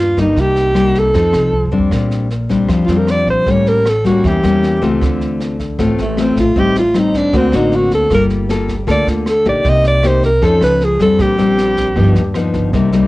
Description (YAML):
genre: bossa nova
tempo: 155 BPM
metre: 4/4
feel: straight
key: Bb major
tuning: A4 = 436 Hz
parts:
  - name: breathy alto saxophone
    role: melody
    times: 0.0-12.4 s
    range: A3 to Eb5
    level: -14 LUFS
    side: right 1 dB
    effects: cassette tape
  - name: nylon-string guitar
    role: accompaniment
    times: 0.0-13.1 s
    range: G2 to A4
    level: -15 LUFS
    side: left 3 dB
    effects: cassette tape
  - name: upright bass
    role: bass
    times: 0.0-13.1 s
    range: G1 to F2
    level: -19 LUFS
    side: right 2 dB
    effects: none
  - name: jazz brush drum kit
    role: drums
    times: 0.2-13.0 s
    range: kick drum, rim click, snare drum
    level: -24 LUFS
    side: right 2 dB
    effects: cassette tape
room: light reverb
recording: home recording on cassette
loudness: -11 LUFS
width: side -18 dB against mid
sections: 0.0-1.9 A section; 1.9-13.1 B section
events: drum fill 1.5-1.9; alto saxophone solo 1.9-13.1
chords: 0.4 Cm7; 1.1 F7; 1.9 Bb69; 3.5 A7b9; 5.0 Dm7; 6.6 Am7b5; 7.3 D7b13; 8.1 Gm9; 9.6 Cm7; 10.4 F7b13; 11.2 Bb69; 12.0 Gaug7